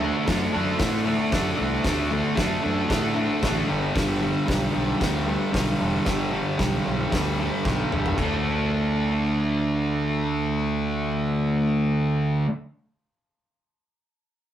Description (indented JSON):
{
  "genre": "garage rock duo or trio",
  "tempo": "114 BPM",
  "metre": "4/4",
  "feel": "straight",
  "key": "unclear",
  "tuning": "A4 = 440 Hz",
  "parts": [
    { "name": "fuzz guitar", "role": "riff", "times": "0.0-12.5 s", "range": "G2 to D4", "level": "-23 LUFS", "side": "equal", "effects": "distortion" },
    { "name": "fuzz fingered electric bass", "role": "bass", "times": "0.0-12.4 s", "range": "E1 to A2", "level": "-28 LUFS", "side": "equal", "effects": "overdrive" },
    { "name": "oversized low-tuned drum kit", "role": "drums", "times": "0.3-8.3 s", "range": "crash cymbal, hi-hat, kick drum, snare drum, toms", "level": "-28 LUFS", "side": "equal", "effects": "none" }
  ],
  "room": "moderate studio reverb, RT60 0.6 s",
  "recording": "rough rehearsal-room recording, warm saturation",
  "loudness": "-21 LUFS",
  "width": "side -10 dB against mid",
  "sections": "0.0-8.2 A section; 8.2-12.4 B section",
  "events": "drum fill 7.6-8.2",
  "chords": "0.0 D; 3.7 G; 8.2 D5"
}